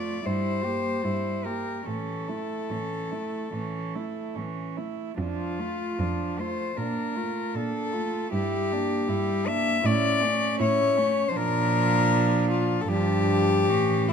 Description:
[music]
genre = classical, lyrical piece for cello ensemble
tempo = 71-81 BPM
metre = 4/4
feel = rubato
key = unclear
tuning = A4 = 440 Hz
[part]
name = clear cello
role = melody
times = 0.0-14.1 s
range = E4 to E5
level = -27 LUFS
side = left 6 dB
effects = none
[part]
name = warm cello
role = second line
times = 0.0-14.1 s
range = Bb3 to G4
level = -31 LUFS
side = right 10 dB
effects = none
[part]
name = warm cello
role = accompaniment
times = 0.0-14.1 s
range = E3 to C#4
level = -32 LUFS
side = left 1 dB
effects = none
[part]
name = warm cello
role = bass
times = 0.0-14.1 s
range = F2 to Bb2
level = -29 LUFS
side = right 3 dB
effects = none
[sound]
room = moderate concert hall reverb, RT60 2.1 s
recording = close, detailed microphones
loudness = -24 LUFS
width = side -7 dB against mid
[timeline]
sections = 0.0-14.1 A section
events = none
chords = 0.3 Edim/G; 1.9 A; 5.2 Dm/F; 6.8 Bbmaj7; 8.3 Em7b5/G; 9.8 A; 11.4 Bb; 12.9 G5

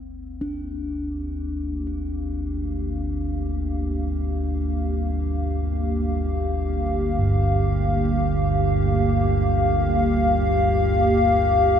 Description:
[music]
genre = dark ambient drone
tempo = free time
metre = none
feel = none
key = unclear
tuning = A4 = 438 Hz
[part]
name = dark analog pad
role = sustained chords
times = 0.0-11.8 s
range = Bb3 to F5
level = -23 LUFS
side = left 1 dB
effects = chorus
[part]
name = bronze singing bowl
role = arpeggios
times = 0.0-11.8 s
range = G2 to D4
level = -28 LUFS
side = equal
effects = ping-pong delay
[part]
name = deep rumbling drone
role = drone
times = 0.0-11.8 s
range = G1 to D2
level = -25 LUFS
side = right 1 dB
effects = built-in reverb
[sound]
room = wet cathedral reverb, RT60 4.9 s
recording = none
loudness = -20 LUFS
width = side -8 dB against mid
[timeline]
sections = 0.0-11.8 A section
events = fade-in on analog synth pad 0.0-11.8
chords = 0.0 Gm7

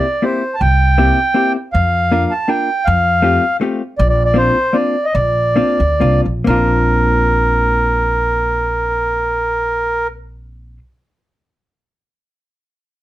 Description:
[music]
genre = musette waltz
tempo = 125-161 BPM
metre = 3/4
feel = swing 53% on 8ths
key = Bb major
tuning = A4 = 440 Hz
[part]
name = mellow accordion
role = melody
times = 0.0-10.1 s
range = Bb4 to A5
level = -15 LUFS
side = right 1 dB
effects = none
[part]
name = hollow-body jazz guitar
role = accompaniment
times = 0.0-10.8 s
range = A3 to Bb4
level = -18 LUFS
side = left 3 dB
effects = none
[part]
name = upright bass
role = bass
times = 0.6-10.8 s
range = Bb1 to F2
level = -17 LUFS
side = equal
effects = none
[sound]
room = light reverb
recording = none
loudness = -13 LUFS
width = side -15 dB against mid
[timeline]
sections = 0.0-6.5 A section; 6.5-9.3 B section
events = slowing down 4.0-6.5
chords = 0.0 C7; 1.7 Bb/F; 2.9 Fadd9; 4.0 Bbadd9

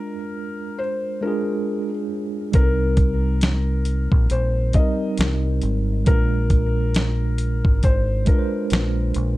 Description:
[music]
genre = lo-fi hip hop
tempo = 68 BPM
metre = 4/4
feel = swing 60% on 16ths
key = unclear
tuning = A4 = 440 Hz
[part]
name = felt-muted upright piano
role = melody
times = 0.0-8.9 s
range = Bb4 to Eb5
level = -29 LUFS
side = left 2 dB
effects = tape echo
[part]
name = tine electric piano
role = accompaniment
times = 0.0-9.4 s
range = G3 to C5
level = -26 LUFS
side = right 2 dB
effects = medium stereo tremolo
[part]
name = deep dub fingered electric bass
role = bass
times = 2.5-9.4 s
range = Ab1 to C2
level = -21 LUFS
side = equal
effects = none
[part]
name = dusty soul sampler-style drum kit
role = drums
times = 2.5-9.4 s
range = finger snaps, hi-hat, kick drum, snare drum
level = -18 LUFS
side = equal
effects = none
[sound]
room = light reverb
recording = dark, warm production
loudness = -18 LUFS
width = side -17 dB against mid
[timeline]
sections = 0.0-9.4 A section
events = none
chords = 0.0 Bb7; 2.5 Cm7; 6.1 Bb7

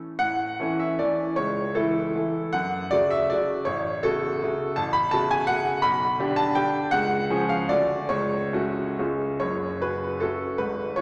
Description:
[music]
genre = classical, romantic triple-time dance for piano with dotted rhythms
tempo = 129-178 BPM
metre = 3/4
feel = rubato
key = A major, F# minor from 4.8 s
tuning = A4 = 440 Hz
[part]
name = clear baby grand piano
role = solo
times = 0.0-11.0 s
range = F#1 to B5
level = -25 LUFS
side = equal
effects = none
[sound]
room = wet scoring stage reverb, RT60 1.6 s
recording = none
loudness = -25 LUFS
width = mono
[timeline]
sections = 0.2-9.4 A section; 9.4-11.0 B section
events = none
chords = 0.2 A; 1.4 A/C#; 2.5 F#m; 3.7 F#m/A; 5.8 G/B; 6.9 C#; 7.7 Dmaj7; 8.1 F#m/C#; 9.0 C#; 9.4 F#m

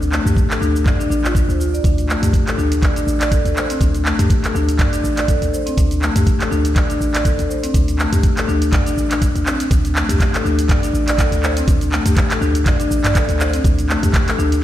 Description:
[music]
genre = afro house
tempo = 122 BPM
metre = 4/4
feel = swing 56% on 16ths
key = unclear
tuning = A4 = 444 Hz
[part]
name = warm 808-style bass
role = bass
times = 0.0-14.6 s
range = A1 to D2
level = -20 LUFS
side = equal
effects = sidechain pumping
[part]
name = afro-pop drum kit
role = drums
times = 0.0-14.6 s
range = cabasa, handclaps, hi-hat, toms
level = -22 LUFS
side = right 1 dB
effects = none
[part]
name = marimba with medium hard mallets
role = arpeggios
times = 0.1-14.5 s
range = A3 to D5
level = -20 LUFS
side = left 2 dB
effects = sidechain pumping, ping-pong delay
[part]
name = electronic kick drum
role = drums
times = 0.4-14.2 s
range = none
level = -16 LUFS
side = equal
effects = none
[sound]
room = digital ambience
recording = played on a big sound system in a bare room, large studio reverb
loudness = -14 LUFS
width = side -12 dB against mid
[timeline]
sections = 0.0-9.7 A section; 9.7-14.6 B section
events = drop 9.7-14.6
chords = 0.0 D5; 1.8 Asus4

